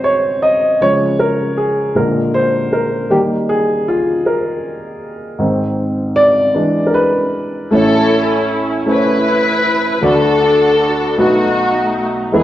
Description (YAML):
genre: gospel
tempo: 52 BPM (dotted quarters)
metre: 6/8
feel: straight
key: A major from 7.7 s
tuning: A4 = 440 Hz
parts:
  - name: dark upright piano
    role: accompaniment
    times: 0.0-12.4 s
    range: A1 to Eb5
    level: -14 LUFS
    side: equal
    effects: none
  - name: muted studio string section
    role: melody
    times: 7.7-12.4 s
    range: A3 to B4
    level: -14 LUFS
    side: left 1 dB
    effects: slapback echo
room: wet recital hall reverb, RT60 1.4 s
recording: worn, warbling old tape, cassette tape, warbly pitch drift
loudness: -12 LUFS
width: side -13 dB against mid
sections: 0.0-7.7 A section; 7.7-12.4 B section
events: upright piano solo 0.0-7.7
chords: 0.0 Ab; 0.8 Db; 2.0 Bb7; 3.1 Eb; 5.4 Ab; 6.6 E7; 7.7 A; 10.0 D; 11.2 B7